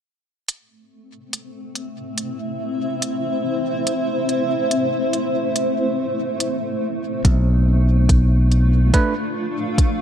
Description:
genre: ambient dub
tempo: 71 BPM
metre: 4/4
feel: swing 58% on 16ths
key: A minor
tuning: A4 = 441 Hz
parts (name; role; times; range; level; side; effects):
- granular cloud pad; sustained chords; 1.6-10.0 s; A3 to F5; -22 LUFS; equal; built-in reverb
- electronic hi-hat; drums; 0.5-10.0 s; none; -24 LUFS; equal; none
- modern bright fingered electric bass; bass; 7.2-8.9 s; B1; -14 LUFS; equal; none
- electronic kick drum; drums; 7.2-10.0 s; none; -16 LUFS; equal; none
- bell-like tine electric piano; stabs; 8.9-9.1 s; A3 to B4; -23 LUFS; right 4 dB; auto-pan
room: light reverb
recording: none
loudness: -17 LUFS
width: side -9 dB against mid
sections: 0.5-10.0 A section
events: none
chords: 0.5 Am; 7.2 Bm7b5

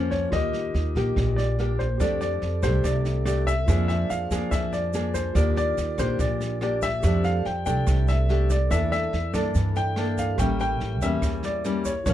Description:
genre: bossa nova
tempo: 143 BPM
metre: 4/4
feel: straight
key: F major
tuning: A4 = 440 Hz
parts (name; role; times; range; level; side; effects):
- warm concert grand piano; melody; 0.0-12.1 s; C5 to G5; -29 LUFS; left 2 dB; none
- barky tine electric piano; accompaniment; 0.0-12.1 s; Db4 to D6; -36 LUFS; right 3 dB; medium stereo tremolo
- nylon-string guitar; accompaniment; 0.0-12.1 s; F2 to A4; -29 LUFS; left 2 dB; none
- upright bass; bass; 0.0-12.1 s; A1 to G2; -25 LUFS; right 1 dB; none
- jazz brush drum kit; drums; 0.1-12.1 s; kick drum, rim click, snare drum; -31 LUFS; equal; none
- tube shaker; percussion; 2.0-12.1 s; none; -43 LUFS; right 8 dB; none
room: little or no reverb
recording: dark, warm production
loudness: -22 LUFS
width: side -12 dB against mid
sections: 0.0-12.1 A section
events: none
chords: 0.3 Ebmaj7; 2.0 F69; 3.7 Bb7/F; 5.4 Ebmaj7; 7.0 F69; 8.7 Gm69/E; 10.4 A7b9

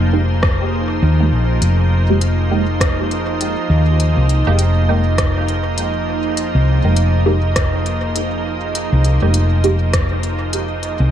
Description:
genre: ambient dub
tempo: 101 BPM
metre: 4/4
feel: swing 60% on 16ths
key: F minor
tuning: A4 = 440 Hz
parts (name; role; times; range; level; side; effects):
- soft additive organ-like pad; sustained chords; 0.0-11.1 s; F3 to C5; -22 LUFS; right 1 dB; ensemble chorus, built-in reverb
- hollow-body short-scale fingered electric bass; bass; 0.0-11.1 s; F1 to Eb2; -16 LUFS; equal; none
- filtered dub chord stab; stabs; 0.1-9.8 s; Ab3 to G4; -23 LUFS; right 2 dB; phaser, analog chorus, dub echo
- electronic kick drum; drums; 0.4-10.1 s; none; -18 LUFS; equal; none
- organic electronic drum kit; drums; 0.4-11.0 s; hi-hat, rim click; -24 LUFS; equal; dub echo
- drifting glass-harmonics texture; texture; 2.0-11.1 s; Eb5; -27 LUFS; right 6 dB; chorus, built-in reverb
room: little or no reverb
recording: none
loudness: -14 LUFS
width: side -10 dB against mid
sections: 0.0-11.1 A section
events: none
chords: 0.0 Fm11

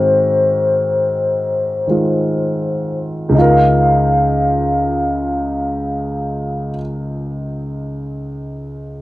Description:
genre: jazz ballad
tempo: free time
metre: none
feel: none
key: Db major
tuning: A4 = 445 Hz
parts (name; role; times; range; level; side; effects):
- vibraphone with soft mallets; melody; 0.0-6.7 s; C5 to F5; -16 LUFS; left 2 dB; none
- warm concert grand piano; accompaniment; 0.0-9.0 s; Db2 to Bb4; -18 LUFS; equal; none
room: little or no reverb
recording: dry, close 1970s-style studio recording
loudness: -14 LUFS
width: side -16 dB against mid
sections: 0.0-3.4 A section; 3.4-7.9 B section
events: slowing down 0.0-3.4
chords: 0.0 Ab7; 3.4 Db69

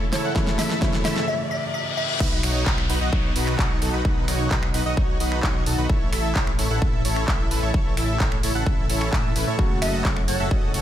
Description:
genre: EDM, festival progressive house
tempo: 130 BPM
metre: 4/4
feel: straight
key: unclear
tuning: A4 = 441 Hz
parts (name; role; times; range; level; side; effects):
- felt-muted upright piano; accompaniment; 0.0-2.2, 9.6-10.8 s; C#3 to F#4; -29 LUFS; equal; sidechain pumping
- lush unison pad; sustained chords; 0.0-10.8 s; A2 to A4; -34 LUFS; equal; none
- dense compressed supersaw; riff; 0.0-10.8 s; D#4 to F#5; -27 LUFS; equal; vintage 12-bit sampler grit, sidechain pumping, ping-pong delay
- riser, reverse cymbal and downlifter; sound effects; 0.0-5.9 s; none; -31 LUFS; left 2 dB; none
- glassy wavetable pluck; melody; 0.1-2.1, 9.8-10.7 s; C#5 to E5; -30 LUFS; left 1 dB; chorus, ping-pong delay
- pop drum kit; drums; 0.1-10.8 s; crash cymbal, finger snaps, handclaps, hi-hat, ride cymbal, snare drum; -29 LUFS; equal; studio ambience
- electronic kick drum; drums; 0.4-10.6 s; none; -23 LUFS; equal; overdrive, studio ambience
- wide detuned saw bass; bass; 2.2-10.8 s; F#1 to A2; -26 LUFS; equal; chorus, sidechain pumping
room: light reverb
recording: none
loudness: -20 LUFS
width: side -11 dB against mid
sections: 0.0-2.2 A section; 2.2-10.8 B section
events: build-up 0.0-2.2; drum fill 0.0-1.3; riser 0.0-2.2; break 1.3-2.2; reverse cymbal 1.3-2.2; drop 2.2-10.8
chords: 0.0 A; 2.2 B; 5.9 A; 9.6 F#m

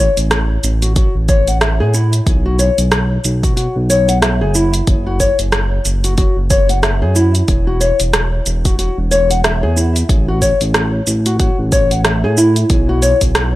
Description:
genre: organic downtempo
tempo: 92 BPM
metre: 4/4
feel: swing 58% on 16ths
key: unclear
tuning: A4 = 440 Hz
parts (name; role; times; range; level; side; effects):
- nylon-string guitar; arpeggios; 0.0-13.2 s; E4 to F#5; -17 LUFS; left 2 dB; tape echo
- smooth synth bass; bass; 0.0-13.6 s; E1 to A2; -16 LUFS; equal; tube saturation, sidechain pumping
- deep house drum kit; drums; 0.2-13.5 s; hi-hat, rim click, shaker; -18 LUFS; right 1 dB; none
- electronic kick drum; drums; 1.0-13.3 s; none; -15 LUFS; equal; none
room: digital ambience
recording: dry, gritty hardware recording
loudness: -12 LUFS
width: side -16 dB against mid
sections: 0.0-13.6 A section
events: none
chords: 0.0 A; 2.3 Bsus2; 4.9 F#5; 7.5 N.C.; 10.1 A; 12.7 Bsus2

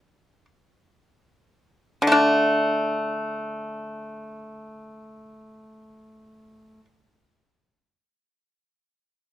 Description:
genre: chinese traditional, Chinese solo plucked strings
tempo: free time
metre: none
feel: none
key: unclear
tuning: A4 = 437 Hz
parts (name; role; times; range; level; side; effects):
- pipa; solo; 0.0-6.8 s; D3 to D4; -21 LUFS; equal; none
room: light reverb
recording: close, detailed microphones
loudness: -20 LUFS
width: side -13 dB against mid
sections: 0.0-2.1 A section; 2.1-6.6 B section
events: slowing down 0.0-2.1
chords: none

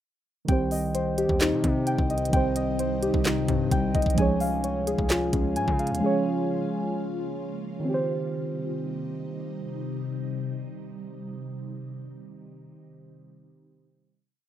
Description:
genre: hip hop, trap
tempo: 130 BPM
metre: 4/4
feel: half-time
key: C phrygian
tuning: A4 = 440 Hz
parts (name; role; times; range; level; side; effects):
- muted felt-like synth keys; accompaniment; 0.4-14.1 s; Eb3 to Db5; -29 LUFS; right 3 dB; chorus, low-pass filter
- ethereal airy pad; sustained chords; 1.8-11.5 s; C3 to F4; -33 LUFS; left 2 dB; ensemble chorus, built-in reverb, phaser
- muted felt-like synth keys; arpeggios; 0.5-7.2 s; C4 to Ab5; -28 LUFS; left 2 dB; chorus, low-pass filter, tape echo
- distorted 808-style bass; bass; 0.5-6.0 s; C2 to Db3; -32 LUFS; equal; distortion
- trap drum kit; drums; 0.5-6.0 s; handclaps, hi-hat, kick drum, snare drum; -27 LUFS; equal; none
room: digital ambience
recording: rough home demo mix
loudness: -24 LUFS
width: side -11 dB against mid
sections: 0.5-7.9 hook; 7.9-11.6 final chord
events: none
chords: 0.5 Cm; 4.2 Db; 7.9 Cm

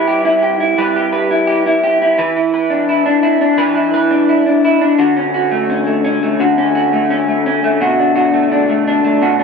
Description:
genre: indie pop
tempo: 85 BPM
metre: 4/4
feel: straight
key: E dorian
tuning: A4 = 438 Hz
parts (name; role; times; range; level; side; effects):
- electric guitar through a small old amp; solo; 0.0-9.4 s; B2 to B4; -11 LUFS; equal; lush chorus, warbly pitch drift
room: light reverb, digital ambience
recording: nothing above 10.9 kHz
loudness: -11 LUFS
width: side -5 dB against mid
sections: 0.0-9.4 A section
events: none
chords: 0.0 G6; 2.2 E5; 5.0 Dmaj7; 7.8 Bm7

